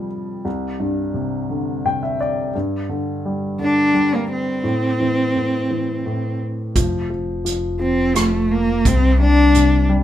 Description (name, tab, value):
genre	acoustic folk-pop ballad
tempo	86 BPM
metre	3/4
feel	straight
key	C mixolydian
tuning	A4 = 440 Hz
part	dark upright piano	accompaniment	0.0-10.0 s	C2 to G5	-22 LUFS	left 1 dB	none
part	warm cello	melody	3.6-9.9 s	A3 to D4	-17 LUFS	equal	none
part	upright bass	bass	6.8-10.0 s	F1 to C2	-19 LUFS	equal	none
part	loose indie drum kit	drums	6.8-9.7 s	hi-hat, kick drum, rim click	-21 LUFS	right 1 dB	none
room	light reverb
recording	minimal, uncompressed stereo recording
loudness	-17 LUFS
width	side -12 dB against mid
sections	0.0-6.7 A section; 6.7-10.0 A section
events	none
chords	0.5 Csus2; 2.5 G5; 4.6 Am; 6.7 N.C.; 8.8 Csus2